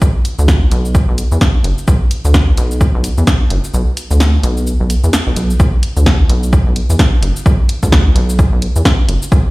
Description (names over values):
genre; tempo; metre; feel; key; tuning
minimal techno; 129 BPM; 4/4; swing 59% on 16ths; B minor; A4 = 440 Hz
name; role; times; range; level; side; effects
rubbery square bass; bass; 0.0-9.4 s; F#1 to E2; -13 LUFS; equal; sidechain pumping
electronic kick drum; drums; 0.0-9.4 s; none; -11 LUFS; equal; none
punchy analog drum machine; drums; 0.0-9.4 s; cabasa, hi-hat, snare drum; -19 LUFS; equal; none
room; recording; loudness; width
little or no reverb; played on a big sound system in a bare room, stone room reverb; -10 LUFS; side -22 dB against mid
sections
0.0-5.6 A section; 5.6-9.5 B section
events
kick drops out 3.7-5.6; drop 5.6-9.5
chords
none